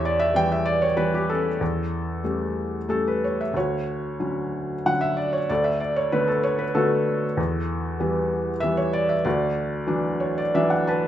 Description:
classical, lyrical solo piano; 95 BPM; 3/4; rubato; D major; A4 = 440 Hz
felt-muted upright piano; solo; 0.0-11.1 s; D2 to A5; -21 LUFS; equal
moderate recital hall reverb, RT60 1.6 s; minimal, uncompressed stereo recording; -21 LUFS; side -11 dB against mid
0.0-11.1 A section
felt piano fill 9.9-11.1
0.0 Em; 1.6 A7/E; 3.6 Dmaj7; 5.5 Bm7/D; 7.4 Em; 9.3 Dadd9
0.34 0.97 | 1.61 2.25 2.90 | 3.55 4.21 4.87 | 5.50 6.13 6.75 | 7.38 8.01 8.63 | 9.25 9.88 10.54

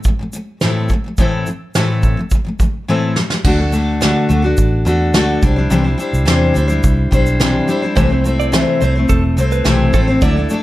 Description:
acoustic pop; 106 BPM; 4/4; straight; A4 = 442 Hz
picked steel-string acoustic guitar; accompaniment; 0.0-10.6 s; A2 to C5; -16 LUFS; left 2 dB
soft brush drum kit; drums; 0.0-10.6 s; crash cymbal, kick drum, shaker, snare drum; -17 LUFS; right 1 dB
vintage muted fingered electric bass; bass; 3.4-10.5 s; E1 to E2; -16 LUFS; equal
direct-recorded clean electric guitar; arpeggios; 8.0-10.5 s; A4 to E5; -23 LUFS; right 9 dB; spring reverb
light reverb; dark, warm production; -12 LUFS; side -16 dB against mid
0.0-3.5 A section; 3.5-10.6 B section
drum fill 2.9-3.5
0.0 Am; 3.5 D; 5.4 Cadd9; 8.0 Am/C
0.06 0.62 | 1.19 1.75 2.32 2.88 | 3.45 4.02 4.58 5.15 | 5.71 6.28 6.84 7.41 | 7.97 8.53 9.10 9.66 | 10.23

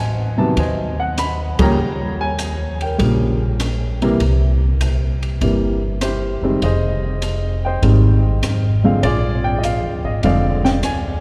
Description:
jazz piano trio; 99 BPM; 4/4; swing 69% on 8ths; Eb mixolydian; A4 = 440 Hz
warm baby grand piano; melody; 0.0-11.2 s; C3 to Cb6; -22 LUFS; equal
upright bass; bass; 0.0-11.2 s; F1 to F2; -21 LUFS; equal
compact cocktail drum kit; drums; 0.6-11.0 s; hi-hat, kick drum, ride cymbal, rim click, snare drum; -28 LUFS; equal
wet cathedral reverb, RT60 4.8 s; recorded in a church or concert hall; -18 LUFS; mono
0.0-11.2 A section
band accent 1.5-1.8
0.0 Adim; 1.8 Eb7; 4.2 C7; 6.6 Fm7; 9.0 Bb7
0.56 1.17 | 1.78 2.38 2.99 3.59 | 4.20 4.80 5.41 6.01 | 6.61 7.22 7.82 8.42 | 9.03 9.63 10.23 10.84

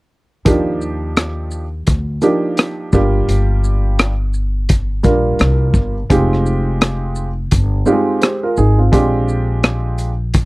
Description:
hip hop, jazz-hop; 85 BPM; 4/4; swing 60% on 16ths; A4 = 441 Hz
warm grand piano; accompaniment; 0.5-10.1 s; F3 to C5; -17 LUFS; right 2 dB
upright bass; bass; 0.5-10.5 s; F1 to Eb2; -17 LUFS; equal
crunchy breakbeat drum kit; drums; 0.5-10.5 s; hi-hat, kick drum, rim click, shaker; -15 LUFS; equal
little or no reverb; dry, close 1970s-style studio recording; -13 LUFS; side -22 dB against mid
0.5-10.5 A section
0.5 Ebmaj9; 2.9 Gm7; 6.1 Fm9; 8.9 Bb13
| 0.46 1.17 1.87 2.58 | 3.28 3.99 4.70 5.40 | 6.11 6.81 7.52 8.22 | 8.93 9.64 10.34

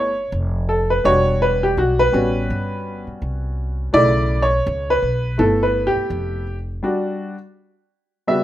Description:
hip hop, jazz-hop; 83 BPM; 4/4; swing 59% on 16ths; E dorian; A4 = 440 Hz
warm upright piano; accompaniment; 0.0-8.4 s; C#3 to E5; -18 LUFS; equal; plate reverb
upright bass; bass; 0.0-6.8 s; E1 to C#2; -22 LUFS; equal
moderate studio reverb, RT60 0.6 s; rough home demo mix; -17 LUFS; side -13 dB against mid
0.0-8.4 A section
upright piano solo 0.0-8.4; break 6.8-8.4
0.0 Gadd9; 1.0 Em9; 2.1 A13; 3.9 B7sus4; 5.4 G69; 6.8 Dadd11/G; 7.9 Em69/C#
0.32 | 1.05 1.77 2.49 3.21 | 3.94 4.66 5.38 6.11 | 6.83 7.55 8.28

